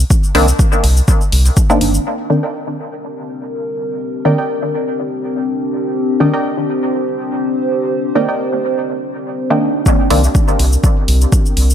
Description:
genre	dub techno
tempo	123 BPM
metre	4/4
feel	swing 54% on 16ths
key	C minor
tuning	A4 = 436 Hz
part	round analog bass	bass	0.0-2.0, 10.1-11.7 s	G1 to C2	-12 LUFS	equal	sidechain pumping
part	electronic kick drum	drums	0.1-1.7, 9.9-11.4 s	none	-13 LUFS	equal	overdrive, studio reverb
part	electronic shaker and hi-hat	drums	0.1-2.0, 9.9-11.7 s	none	-22 LUFS	left 2 dB	studio reverb
part	filtered dub chord stab	stabs	0.3-10.2 s	Eb3 to D4	-17 LUFS	equal	chorus, phaser, dub echo
part	dark analog pad	sustained chords	2.9-11.7 s	C4 to C5	-19 LUFS	left 1 dB	chorus, phaser, sidechain pumping
part	filtered dub chord stab	riff	2.3-9.7 s	Bb4 to G5	-25 LUFS	right 3 dB	chorus, sidechain pumping, dub echo
room	light reverb, digital ambience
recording	dark, warm production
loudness	-13 LUFS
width	side -9 dB against mid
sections	0.0-2.1 A section; 2.1-9.9 B section; 9.9-11.7 A section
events	none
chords	0.0 Cm9; 9.9 C7sus2

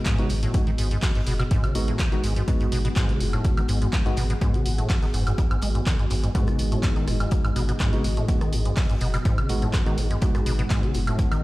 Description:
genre	acid house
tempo	124 BPM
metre	4/4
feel	straight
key	G# minor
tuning	A4 = 440 Hz
part	dark analog pad	sustained chords	0.0-11.4 s	B3 to F#5	-34 LUFS	equal	chorus, sidechain pumping
part	tine electric piano	stabs	0.0-11.4 s	G#3 to F#4	-31 LUFS	equal	slow stereo tremolo, dub echo
part	modern studio drum kit	drums	0.0-11.4 s	hi-hat, snare drum	-44 LUFS	left 4 dB	none
part	acid bass, square	riff	0.1-11.4 s	F#2 to G#3	-27 LUFS	equal	analog chorus
part	electronic kick drum	drums	0.1-11.3 s	none	-23 LUFS	equal	none
part	punchy analog drum machine	drums	0.1-11.4 s	handclaps, hi-hat, rim click, woodblock	-32 LUFS	right 1 dB	none
part	warm sub bass	bass	0.3-11.1 s	F#1 to G#1	-26 LUFS	equal	sidechain pumping
room	light reverb, digital ambience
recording	played on a big sound system in a bare room, stone room reverb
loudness	-21 LUFS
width	side -18 dB against mid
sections	0.0-11.4 A section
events	none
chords	0.0 G#m7

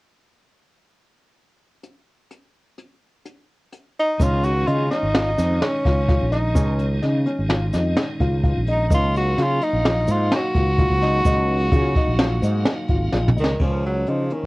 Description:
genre	progressive instrumental, band music in an uneven meter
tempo	128 BPM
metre	5/4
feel	straight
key	Db major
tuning	A4 = 440 Hz
part	jazz brush drum kit	drums	1.8-14.4 s	crash cymbal, hi-hat, kick drum, snare drum, toms	-22 LUFS	equal	cassette tape
part	clear tenor saxophone	melody	4.0-14.5 s	Eb3 to Gb4	-23 LUFS	equal	plate reverb, analog delay
part	tonewheel organ	accompaniment	4.2-13.6 s	Eb3 to F5	-31 LUFS	right 1 dB	fast rotary speaker, cassette tape
part	dark baby grand piano	arpeggios	4.2-14.5 s	Db4 to F4	-27 LUFS	left 2 dB	cassette tape, plate reverb
part	fretless electric bass	bass	4.2-14.5 s	Ab1 to Db3	-21 LUFS	equal	analog chorus
part	tube shaker	percussion	4.2-13.5 s	none	-43 LUFS	right 3 dB	none
room	moderate booth ambience, RT60 0.2 s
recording	home recording on cassette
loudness	-18 LUFS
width	side -22 dB against mid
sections	1.8-4.2 A section; 4.2-13.6 B section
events	tonewheel organ fill 12.7-13.6; drum fill 13.1-13.6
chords	1.8 N.C.; 4.2 Dbsus2; 8.9 Ebmadd9; 13.6 Dbsus2

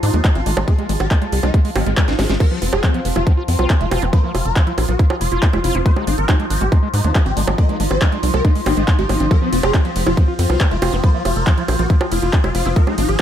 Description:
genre	psychedelic trance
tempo	139 BPM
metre	4/4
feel	straight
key	F minor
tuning	A4 = 443 Hz
part	swarming rave lead	melody	0.0-13.2 s	Ab3 to Eb5	-24 LUFS	equal	chorus, phaser, sidechain pumping, ping-pong delay
part	overtone-sweeping drone	sustained chords	0.0-13.2 s	F3 to F4	-25 LUFS	left 1 dB	chorus, built-in reverb, phaser, sidechain pumping
part	tight sequencer bass	bass	0.0-13.2 s	F1 to Ab2	-19 LUFS	equal	none
part	drum and bass drum kit	drums	0.0-13.2 s	bongos, crash cymbal, handclaps, hi-hat, ride cymbal, snare drum	-23 LUFS	right 2 dB	overdrive, studio reverb
part	screaming distorted acid line	riff	0.1-13.2 s	F3 to F4	-26 LUFS	equal	distortion, chorus, auto-pan, sidechain pumping, tape echo
part	electronic kick drum	drums	0.2-13.2 s	none	-14 LUFS	equal	overdrive, studio reverb
part	formant-sweep wobble bass	second line	3.6-7.7, 10.5-12.8 s	Bb3 to C4	-34 LUFS	left 5 dB	none
room	digital ambience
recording	none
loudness	-14 LUFS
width	side -10 dB against mid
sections	0.0-13.2 A section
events	drum fill 2.1-2.4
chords	0.0 Ab5; 2.4 F5; 5.9 Ab5; 9.3 F5

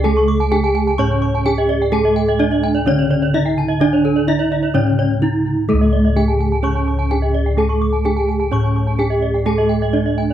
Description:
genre	Balinese gamelan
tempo	127 BPM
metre	4/4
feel	straight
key	C# pelog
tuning	A4 = 438 Hz
part	gamelan-type bronze metallophone	melody	0.0-10.3 s	A3-40c to C#5	-18 LUFS	equal	tape echo
part	gamelan-type bronze metallophone	accompaniment	0.0-10.3 s	C#3 to C#4	-23 LUFS	right 7 dB	none
part	gamelan-type bronze metallophone	arpeggios	0.0-10.3 s	A4-40c to D6	-25 LUFS	left 9 dB	none
part	gamelan-type bronze metallophone	arpeggios	0.0-10.3 s	C#5 to C#6	-26 LUFS	right 9 dB	none
part	gamelan-type bossed gongs	bass	0.0-10.3 s	C#2 to A4-40c	-18 LUFS	left 1 dB	none
room	little or no reverb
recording	dry, close 1970s-style studio recording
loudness	-14 LUFS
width	side -11 dB against mid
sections	0.0-10.3 A section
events	none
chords	none

